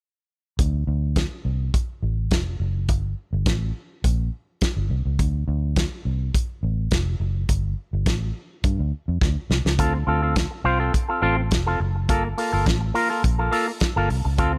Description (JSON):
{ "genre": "disco", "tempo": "104 BPM", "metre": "4/4", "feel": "straight", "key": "unclear", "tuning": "A4 = 438 Hz", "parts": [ { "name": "vintage muted fingered electric bass", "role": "bass", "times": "0.6-14.6 s", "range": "F1 to G2", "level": "-26 LUFS", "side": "equal", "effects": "none" }, { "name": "warm soul drum kit", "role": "drums", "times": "0.6-14.5 s", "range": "hi-hat, kick drum, snare drum", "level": "-26 LUFS", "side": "equal", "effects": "none" }, { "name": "electric guitar with an envelope filter", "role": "accompaniment", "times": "9.8-14.6 s", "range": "Bb3 to C5", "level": "-26 LUFS", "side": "equal", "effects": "low-pass filter" } ], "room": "little or no reverb", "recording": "none", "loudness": "-23 LUFS", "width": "mono", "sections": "0.6-14.6 A section", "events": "drum fill 9.2-9.8", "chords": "0.6 Dm7; 2.9 Gmadd9; 5.2 Dm7; 7.5 Gsus2; 9.8 Dm7; 12.1 Gm9", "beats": "| 0.59 1.17 1.74 2.32 | 2.89 3.47 4.04 4.62 | 5.19 5.77 6.34 6.92 | 7.49 8.07 8.64 9.22 | 9.79 10.37 10.94 11.52 | 12.09 12.66 13.24 13.81 | 14.39" }